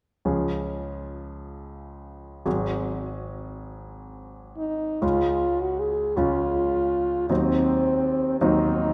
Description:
classical, romantic duo for French horn and grand piano; 40-58 BPM (dotted quarters); 6/8; rubato; Db major; A4 = 441 Hz
clear concert grand piano; accompaniment; 0.3-8.9 s; Ab1 to Ab4; -29 LUFS; equal
warm French horn; melody; 4.6-8.9 s; C4 to Ab4; -26 LUFS; equal
moderate scoring stage reverb, RT60 1.9 s; -25 LUFS; mono
0.3-5.0 A section; 5.0-8.9 B section
0.3 Db; 2.5 Ab7; 5.0 Db; 7.3 Cdim/Eb
| 0.26 1.39 | 2.46 3.64 | 5.02 6.17 | 7.30 8.40

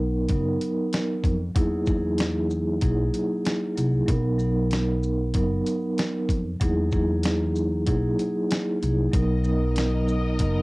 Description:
hip hop, boom-bap hip-hop; 95 BPM; 4/4; swing 56% on 16ths; B major; A4 = 439 Hz
vibraphone with soft mallets; accompaniment; 0.0-10.6 s; F#3 to A#4; -25 LUFS; right 1 dB; high-pass filter, low-pass filter, cassette tape
upright bass; bass; 0.0-10.6 s; F#1 to E#2; -26 LUFS; equal
dusty soul sampler-style drum kit; drums; 0.3-10.6 s; hi-hat, kick drum, shaker, snare drum; -26 LUFS; equal; cassette tape
rich studio string section; sustained chords; 9.1-10.6 s; B2 to D#5; -35 LUFS; left 2 dB; high-pass filter, low-pass filter, cassette tape
light reverb; home recording on cassette; -22 LUFS; side -22 dB against mid
0.0-10.6 A section
0.0 Bmaj7; 1.6 Emaj9#11; 4.1 Bmaj7; 6.6 Emaj9#11; 9.1 Bmaj7
0.29 0.93 | 1.56 2.19 2.82 3.45 | 4.08 4.71 5.35 5.98 | 6.61 7.24 7.87 8.50 | 9.13 9.77 10.40

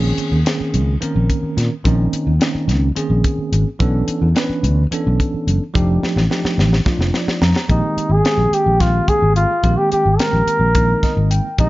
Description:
electric jazz fusion; 216 BPM (eighths); 7/8; straight; A4 = 440 Hz
bell-like tine electric piano; accompaniment; 0.0-11.7 s; Eb3 to Bb5; -21 LUFS; right 2 dB; fast stereo tremolo
fretless electric bass; bass; 0.0-11.7 s; F1 to Bb2; -16 LUFS; equal
tight funk drum kit; drums; 0.2-11.7 s; hi-hat, kick drum, snare drum; -20 LUFS; equal
trumpet with bucket mute; melody; 7.7-11.7 s; Eb4 to Bb4; -17 LUFS; equal
light reverb; dark, warm production, nothing above 7.5 kHz; -14 LUFS; side -18 dB against mid
0.0-7.7 A section; 7.7-11.7 B section
drum fill 6.0-7.7; tine electric piano fill 6.9-7.7, 10.8-11.6
0.0 Bbm11; 3.8 Bm11; 5.7 F13; 7.7 Bb13sus4
0.17 0.45 0.73 1.01 1.29 1.57 | 1.84 2.12 2.40 2.68 2.96 3.24 3.52 | 3.79 4.07 4.35 4.63 4.91 5.18 5.46 | 5.74 6.02 6.30 6.58 6.85 7.13 7.41 | 7.69 7.97 8.24 8.52 8.80 9.08 9.36 | 9.64 9.91 10.19 10.47 10.75 11.03 11.31 | 11.59

